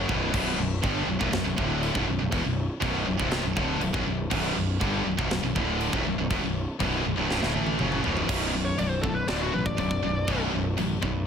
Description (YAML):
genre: heavy metal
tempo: 121 BPM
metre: 4/4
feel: straight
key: B minor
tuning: A4 = 441 Hz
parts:
  - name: heavy high-gain guitar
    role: riff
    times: 0.0-11.2 s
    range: B1 to A3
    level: -30 LUFS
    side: right 12 dB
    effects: distortion
  - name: scooped high-gain guitar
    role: riff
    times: 0.0-11.2 s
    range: B1 to A3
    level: -29 LUFS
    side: left 8 dB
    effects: distortion
  - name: fuzz fingered electric bass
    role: bass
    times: 0.0-11.2 s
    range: B0 to B1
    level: -31 LUFS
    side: equal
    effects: overdrive
  - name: tight metal drum kit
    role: drums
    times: 0.1-11.1 s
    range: china cymbal, crash cymbal, kick drum, snare drum, toms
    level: -32 LUFS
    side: equal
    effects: none
  - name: high-gain lead guitar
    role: melody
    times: 8.7-10.4 s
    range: F#4 to D5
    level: -31 LUFS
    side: left 2 dB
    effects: distortion, digital delay
room: light reverb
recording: none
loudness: -24 LUFS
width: side -7 dB against mid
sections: 0.0-8.3 A section; 8.3-11.3 B section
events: drum fill 7.3-8.3; lead electric guitar solo 8.3-11.3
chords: 0.0 Bm